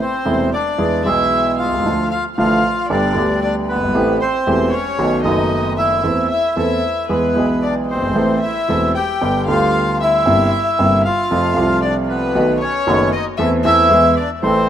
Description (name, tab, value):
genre	tango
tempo	114 BPM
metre	4/4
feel	rubato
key	A minor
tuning	A4 = 440 Hz
part	bandoneon	melody	0.0-14.7 s	B3 to G5	-18 LUFS	equal	none
part	warm violin	second line	0.0-14.7 s	B4 to G5	-24 LUFS	left 6 dB	none
part	warm concert grand piano	accompaniment	0.3-14.7 s	E1 to A4	-17 LUFS	right 1 dB	none
room	moderate lush hall reverb, RT60 2.7 s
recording	rough home demo mix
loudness	-14 LUFS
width	side -10 dB against mid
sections	0.0-14.7 A section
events	none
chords	0.0 Amadd9; 0.8 E; 1.9 Dm; 2.9 G; 3.9 Am7; 5.0 B7; 6.0 Am/E; 7.1 E; 8.2 Am; 9.2 G; 10.3 C7/G; 11.3 F; 12.4 B7; 13.4 Am/E; 13.9 E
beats	0.26 0.79 1.32 | 1.85 2.38 2.90 3.42 | 3.95 4.47 4.99 5.51 | 6.03 6.56 7.09 7.62 | 8.15 8.68 9.21 9.74 | 10.27 10.79 11.31 11.83 | 12.35 12.87 13.39 13.91 | 14.43